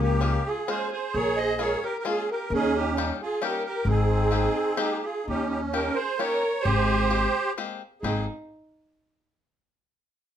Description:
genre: musette waltz.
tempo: 131 BPM.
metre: 3/4.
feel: rubato.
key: Ab major.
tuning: A4 = 441 Hz.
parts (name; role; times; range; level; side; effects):
musette accordion; melody; 0.0-8.2 s; Bb3 to Eb5; -26 LUFS; right 2 dB; none.
dark violin; second line; 0.0-8.2 s; Db4 to C5; -32 LUFS; right 2 dB; none.
upright bass; bass; 0.0-8.3 s; Ab1 to Eb2; -26 LUFS; left 1 dB; none.
bluegrass banjo; accompaniment; 0.2-8.3 s; G3 to Ab4; -31 LUFS; left 7 dB; none.
room: moderate studio reverb, RT60 0.6 s.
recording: none.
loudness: -23 LUFS.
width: side -10 dB against mid.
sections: 0.0-5.3 A section; 5.3-8.0 B section; 8.0-9.4 C section.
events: none.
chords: 0.0 Db6; 1.1 Bbm7; 2.5 Eb7; 3.9 Abmaj9; 5.3 Eb7; 6.7 Abmaj9.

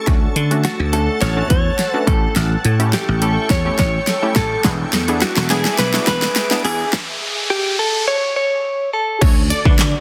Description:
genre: dance-pop.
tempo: 105 BPM.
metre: 4/4.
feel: straight.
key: D major.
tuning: A4 = 439 Hz.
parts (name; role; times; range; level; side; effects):
shimmering ambient pad; sustained chords; 0.0-10.0 s; D3 to D6; -30 LUFS; equal; chorus, built-in reverb, sidechain pumping.
glassy wavetable pluck; accompaniment; 0.1-10.0 s; A3 to B4; -27 LUFS; equal; chorus, sidechain pumping.
dry thumbed slap bass; bass; 0.1-9.9 s; E1 to D3; -21 LUFS; equal; sidechain pumping.
pop drum kit; drums; 0.1-9.9 s; crash cymbal, handclaps, hi-hat, kick drum, snare drum; -20 LUFS; equal; soft clipping on snare.
riser; sound effects; 2.6-8.1 s; none; -29 LUFS; equal; none.
direct-recorded clean electric guitar; melody; 0.6-9.2 s; F#4 to C#5; -23 LUFS; equal; digital delay.
plucky unison lead; melody; 9.2-10.0 s; C#5 to D5; -25 LUFS; equal; phaser.
room: light reverb, digital ambience.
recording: dense, heavily limited modern master, high-pass filter.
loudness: -17 LUFS.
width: mono.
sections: 0.1-9.2 A section.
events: build-up 0.1-9.2; drum fill 0.1-6.9; filter sweep 0.1-9.2; riser 2.6-9.2.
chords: 0.1 Dmaj7; 2.1 A7; 4.6 E7; 6.9 N.C.; 9.2 Dmaj7.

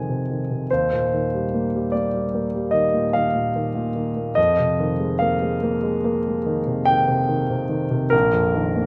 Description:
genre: classical, impressionist solo piano.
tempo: 48 BPM (dotted quarters).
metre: 9/8.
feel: rubato.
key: Eb major.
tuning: A4 = 438 Hz.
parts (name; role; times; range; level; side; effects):
warm concert grand piano; solo; 0.0-8.9 s; Bb1 to Ab5; -22 LUFS; equal; none.
room: wet recital hall reverb, RT60 1.4 s.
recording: none.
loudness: -21 LUFS.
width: mono.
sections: 0.0-8.9 A section.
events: none.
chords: 0.0 Fm9; 0.7 Ebadd9; 4.4 Fm11; 8.1 Bbsus4.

